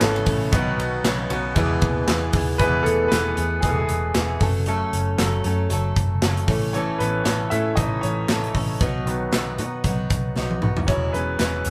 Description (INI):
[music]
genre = piano-driven pop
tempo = 116 BPM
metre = 4/4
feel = swing 56% on 16ths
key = E major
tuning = A4 = 440 Hz
[part]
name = clear baby grand piano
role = accompaniment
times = 0.0-11.7 s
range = A2 to E5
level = -28 LUFS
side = equal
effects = none
[part]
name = picked steel-string acoustic guitar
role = riff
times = 0.0-11.7 s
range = E2 to A4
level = -29 LUFS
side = equal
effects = none
[part]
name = vintage muted picked electric bass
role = bass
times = 0.0-11.7 s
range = E1 to B2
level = -28 LUFS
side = equal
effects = none
[part]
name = modern studio drum kit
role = drums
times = 0.0-11.7 s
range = handclaps, hi-hat, kick drum, ride cymbal, snare drum, toms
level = -26 LUFS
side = equal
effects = none
[sound]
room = moderate studio ambience, RT60 0.5 s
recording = band playing live in one room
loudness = -22 LUFS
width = mono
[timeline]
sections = 0.0-2.6 A section; 2.6-10.9 B section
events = grand piano solo 0.0-2.6, 2.6-10.9; drum fill 10.4-10.9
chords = 0.0 A; 0.5 B; 1.6 E; 4.4 F#m; 6.5 A; 8.8 B; 10.9 E6